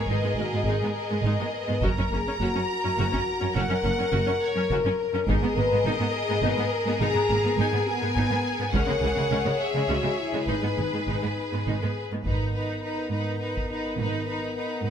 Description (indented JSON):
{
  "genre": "cinematic, epic orchestral film score",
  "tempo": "69 BPM (dotted quarters)",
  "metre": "6/8",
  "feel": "straight",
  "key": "G# minor",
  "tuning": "A4 = 440 Hz",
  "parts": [
    { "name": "clear symphonic violin section", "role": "melody", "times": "0.0-14.9 s", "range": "B4 to A#5", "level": "-32 LUFS", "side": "left 1 dB", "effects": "none" },
    { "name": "clear symphonic violin section", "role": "second line", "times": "0.0-14.9 s", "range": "G#4 to C#5", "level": "-32 LUFS", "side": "left 3 dB", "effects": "none" },
    { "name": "mellow French horn section", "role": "sustained chords", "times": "0.0-14.9 s", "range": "B3 to B4", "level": "-29 LUFS", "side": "left 3 dB", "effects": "none" },
    { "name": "bright symphonic viola section", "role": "accompaniment", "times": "0.1-14.9 s", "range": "E3 to F#4", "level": "-32 LUFS", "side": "right 1 dB", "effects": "none" },
    { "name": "clear symphonic double bass section", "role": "bass", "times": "0.1-14.5 s", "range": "F#1 to C#2", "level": "-30 LUFS", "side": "right 3 dB", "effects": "none" },
    { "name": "rich symphonic cello section", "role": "bass", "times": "0.1-14.9 s", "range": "F#2 to C#3", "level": "-30 LUFS", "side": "right 2 dB", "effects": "none" },
    { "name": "taiko ensemble", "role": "drums", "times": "1.8-13.8 s", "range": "none", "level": "-31 LUFS", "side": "equal", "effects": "none" }
  ],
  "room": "moderate recital hall reverb, RT60 1.4 s",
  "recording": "close, detailed microphones",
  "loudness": "-23 LUFS",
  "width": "side -8 dB against mid",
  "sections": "0.0-12.3 A section; 12.3-14.9 B section",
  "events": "none",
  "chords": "0.0 G#madd9; 1.8 F#; 5.3 G#madd9; 8.7 C#m; 10.5 G#m; 12.3 G#madd9"
}